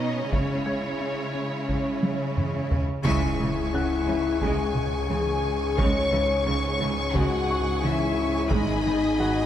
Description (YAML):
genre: cinematic, hybrid orchestral and electronic film score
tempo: 88 BPM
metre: 4/4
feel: straight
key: C# minor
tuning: A4 = 440 Hz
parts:
  - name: dark symphonic violin section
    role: melody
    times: 0.0-9.5 s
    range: C#5 to C#6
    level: -34 LUFS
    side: left 3 dB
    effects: none
  - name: rich studio violin section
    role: second line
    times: 0.0-9.5 s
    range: D#4 to C#6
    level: -33 LUFS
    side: left 2 dB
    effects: none
  - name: dark symphonic viola section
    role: accompaniment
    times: 0.0-9.5 s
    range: C#3 to G#4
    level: -33 LUFS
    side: right 1 dB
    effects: none
  - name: rich symphonic cello section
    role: bass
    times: 0.0-9.3 s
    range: G#2 to C#3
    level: -32 LUFS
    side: right 2 dB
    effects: none
  - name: felt-muted upright piano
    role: texture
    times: 0.0-9.5 s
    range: F#4 to G#6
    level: -37 LUFS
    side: left 1 dB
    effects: none
  - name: thumb-piano-like synth pluck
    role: arpeggios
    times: 0.3-9.4 s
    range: C#3 to G#4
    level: -35 LUFS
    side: left 2 dB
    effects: chorus, tape echo
  - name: taiko ensemble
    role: drums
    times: 0.3-9.1 s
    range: none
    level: -29 LUFS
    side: equal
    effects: none
  - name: warm symphonic double bass section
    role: bass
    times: 3.0-9.3 s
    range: G#1 to C#2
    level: -32 LUFS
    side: right 3 dB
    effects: none
  - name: dark French horn section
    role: sustained chords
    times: 3.1-9.5 s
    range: D#4 to C#5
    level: -27 LUFS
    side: left 4 dB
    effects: none
  - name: mellow trombone section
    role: sustained chords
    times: 3.1-9.5 s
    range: G#2 to C#4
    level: -34 LUFS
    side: right 3 dB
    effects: none
  - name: detuned saw bass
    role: bass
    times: 3.1-9.5 s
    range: G#1 to C#2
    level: -30 LUFS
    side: equal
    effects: none
  - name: impact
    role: sound effects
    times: 3.1-5.8 s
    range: none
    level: -36 LUFS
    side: right 1 dB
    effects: none
room: wet scoring stage reverb, RT60 2.0 s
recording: none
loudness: -22 LUFS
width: side -10 dB against mid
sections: 0.0-3.1 A section; 3.1-9.5 A section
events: drum fill 2.0-3.1; band accent 3.1-3.7; impact 3.1-5.8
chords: 0.3 C#m; 8.5 G#m